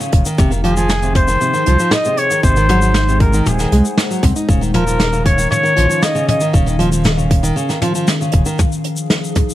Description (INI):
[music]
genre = folktronica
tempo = 117 BPM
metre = 4/4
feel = straight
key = Eb dorian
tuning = A4 = 440 Hz
[part]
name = warbly tape-like pad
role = sustained chords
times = 0.0-9.5 s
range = Eb3 to Gb5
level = -22 LUFS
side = left 1 dB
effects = chorus, built-in reverb
[part]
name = nylon-string guitar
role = arpeggios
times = 0.0-8.6 s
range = C3 to Eb4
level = -19 LUFS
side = right 1 dB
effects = none
[part]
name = vintage brush drum kit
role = drums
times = 0.0-9.5 s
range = hi-hat, shaker, snare drum, toms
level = -20 LUFS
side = equal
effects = none
[part]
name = warm sub bass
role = bass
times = 0.1-8.4 s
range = Eb1 to C2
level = -17 LUFS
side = equal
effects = tube saturation
[part]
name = electronic kick drum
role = drums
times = 0.1-9.5 s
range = none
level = -14 LUFS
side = equal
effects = none
[part]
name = warm flugelhorn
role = melody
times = 0.6-6.5 s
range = Ab4 to Eb5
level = -18 LUFS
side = equal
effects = ping-pong delay
[sound]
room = light reverb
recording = vinyl crackle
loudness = -12 LUFS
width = side -14 dB against mid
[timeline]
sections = 0.0-9.5 A section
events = none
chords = 0.4 Fm7; 2.4 Ab7; 4.5 Ebsus2; 8.6 Fm7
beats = | 0.39 0.90 1.41 1.92 | 2.44 2.95 3.46 3.98 | 4.49 5.00 5.51 6.03 | 6.54 7.05 7.57 8.08 | 8.59 9.10